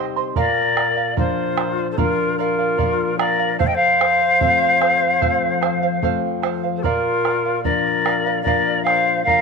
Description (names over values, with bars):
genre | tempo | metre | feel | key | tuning
andean folk, Andean ensemble | 74 BPM | 4/4 | straight | unclear | A4 = 440 Hz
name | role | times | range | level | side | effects
charango | accompaniment | 0.0-9.4 s | A4 to C6 | -25 LUFS | right 15 dB | none
nylon-string guitar | accompaniment | 0.0-9.4 s | F2 to Eb4 | -26 LUFS | left 15 dB | none
bright reedy polished pan flute | melody | 0.4-9.4 s | Bb4 to G5 | -18 LUFS | equal | none
breathy bright large quena | second line | 0.4-9.4 s | F4 to Eb5 | -24 LUFS | left 11 dB | none
bombo | percussion | 0.4-9.4 s | none | -25 LUFS | right 5 dB | none
room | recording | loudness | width
moderate echo chamber reverb, RT60 2.1 s | 1960s-style stereo with parts hard left and right | -16 LUFS | side -4 dB against mid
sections
0.0-9.4 A section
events
none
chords
0.4 Bb; 3.6 F; 6.8 Bb